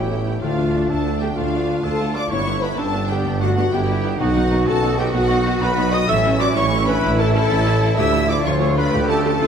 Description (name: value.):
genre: cinematic.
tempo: 127 BPM (dotted quarters).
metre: 12/8.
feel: straight.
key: unclear.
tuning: A4 = 438 Hz.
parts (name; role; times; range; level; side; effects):
warm studio violin section; melody; 0.0-9.5 s; F5 to E6; -31 LUFS; left 4 dB; none.
hollow flute section; second line; 0.0-9.5 s; F5 to E6; -31 LUFS; equal; none.
mellow clarinet; second line; 0.0-9.5 s; A3 to A4; -29 LUFS; left 2 dB; none.
mellow cor anglais; second line; 0.0-9.5 s; F4 to E5; -31 LUFS; right 2 dB; none.
warm symphonic violin section; second line; 0.0-9.5 s; F5 to E6; -31 LUFS; right 1 dB; none.
clear symphonic viola section; accompaniment; 0.0-9.5 s; A3 to F4; -30 LUFS; right 2 dB; none.
clear trombone section; sustained chords; 0.0-9.5 s; D3 to E4; -31 LUFS; right 5 dB; none.
mellow French horn section; sustained chords; 0.0-9.5 s; F4 to E5; -24 LUFS; left 4 dB; none.
concert harp; arpeggios; 0.0-9.5 s; G2 to C#5; -28 LUFS; left 8 dB; none.
dark trumpet section; stabs; 0.0-9.5 s; F4 to E5; -29 LUFS; equal; none.
clear tuba; bass; 0.0-9.5 s; G1 to D2; -24 LUFS; right 4 dB; none.
rich symphonic cello section; bass; 0.0-9.5 s; C#4 to G4; -27 LUFS; right 1 dB; none.
rich symphonic double bass section; bass; 0.0-9.5 s; G1 to D2; -23 LUFS; right 3 dB; none.
room: wet scoring stage reverb, RT60 1.9 s.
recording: none.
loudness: -16 LUFS.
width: side -7 dB against mid.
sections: 0.0-9.5 A section.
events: none.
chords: 0.4 Dm; 2.3 G; 4.2 B; 6.1 A; 8.0 Dm.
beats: | 0.42 0.90 1.37 1.84 | 2.31 2.78 3.26 3.73 | 4.20 4.67 5.15 5.62 | 6.09 6.56 7.04 7.51 | 7.98 8.45 8.93 9.40.